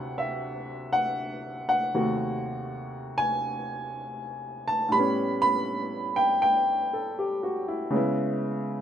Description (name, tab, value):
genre	solo jazz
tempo	80 BPM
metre	4/4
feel	swing 66% on 8ths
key	unclear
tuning	A4 = 442 Hz
part	clear upright piano	solo	0.0-8.8 s	D2 to B5	-25 LUFS	equal	none
room	light reverb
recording	minimal, uncompressed stereo recording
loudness	-25 LUFS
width	side -9 dB against mid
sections	0.0-8.8 A section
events	none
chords	0.0 D9; 1.9 D#dim7; 4.9 A9; 7.9 C#m7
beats	0.45 1.20 | 1.95 2.69 3.44 4.19 | 4.94 5.68 6.43 7.18 | 7.92 8.67